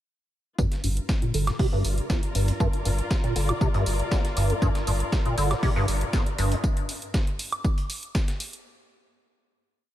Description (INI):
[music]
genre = acid house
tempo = 119 BPM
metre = 4/4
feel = straight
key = G minor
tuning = A4 = 437 Hz
[part]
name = liquid acid bass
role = riff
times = 0.6-6.6 s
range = G1 to D3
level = -27 LUFS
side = equal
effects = tube saturation, analog chorus, ping-pong delay
[part]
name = breakbeat sampler-style drum kit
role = drums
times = 0.6-8.5 s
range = hi-hat, snare drum, tambourine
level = -38 LUFS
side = equal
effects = sidechain pumping on perc, high-pass filter on perc, studio reverb, high-pass filter on snare, sidechain pumping on hats, high-pass filter on hats
[part]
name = electronic kick drum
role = drums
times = 0.6-8.3 s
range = none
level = -24 LUFS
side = equal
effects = overdrive, studio reverb
[part]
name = warm studio string section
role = texture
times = 0.6-6.6 s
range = F4 to D5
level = -35 LUFS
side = left 2 dB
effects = sidechain pumping
[part]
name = electronic hi-hat and woodblock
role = drums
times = 0.7-8.6 s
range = none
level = -34 LUFS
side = right 3 dB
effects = overdrive, studio reverb
[part]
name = saturated sub bass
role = bass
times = 0.8-6.5 s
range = G1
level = -26 LUFS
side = equal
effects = tube saturation, sidechain pumping
[sound]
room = light reverb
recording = none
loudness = -23 LUFS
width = side -13 dB against mid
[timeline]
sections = 0.6-8.7 groove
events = fade-in on string section 0.6-6.6; filter sweep on acid bass 0.6-6.6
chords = 0.6 Gm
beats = | 0.59 1.09 1.59 2.10 | 2.60 3.11 3.61 4.12 | 4.62 5.12 5.63 6.13 | 6.64 7.14 7.64 8.15